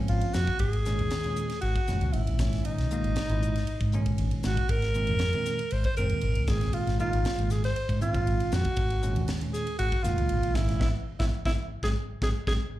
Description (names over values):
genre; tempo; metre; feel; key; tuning
electric jazz fusion; 118 BPM; 4/4; straight; Ab mixolydian; A4 = 442 Hz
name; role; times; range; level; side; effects
bell-like tine electric piano; accompaniment; 0.0-12.6 s; Bb2 to E4; -33 LUFS; right 1 dB; medium stereo tremolo, plate reverb, slapback echo
woody fretless electric bass; bass; 0.0-12.6 s; F1 to Ab2; -28 LUFS; equal; none
clear alto saxophone; melody; 0.1-12.5 s; D#4 to C5; -31 LUFS; right 1 dB; slapback echo, plate reverb
crisp fusion drum kit; drums; 0.1-12.6 s; hi-hat, kick drum, ride cymbal, snare drum; -33 LUFS; equal; none
room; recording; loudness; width
light reverb; live gig heard through the venue's PA, club reverb; -25 LUFS; side -15 dB against mid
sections
0.0-12.8 A section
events
band accent 10.8-12.8; drum fill 11.8-12.8; tine electric piano fill 12.1-12.8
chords
0.0 Dbmaj7/Ab; 0.6 Gbadd9/Ab; 2.4 Emaj7/G#; 3.7 Eb7sus4/Ab; 4.7 Ab69; 8.8 Gbmaj9/Ab; 10.6 Emaj7/G#; 11.8 Ab7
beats
0.09 | 0.61 1.12 1.63 2.14 | 2.65 3.16 3.67 4.19 | 4.70 5.21 5.72 6.23 | 6.74 7.25 7.76 8.27 | 8.78 9.29 9.80 10.31 | 10.81 11.32 11.83 12.34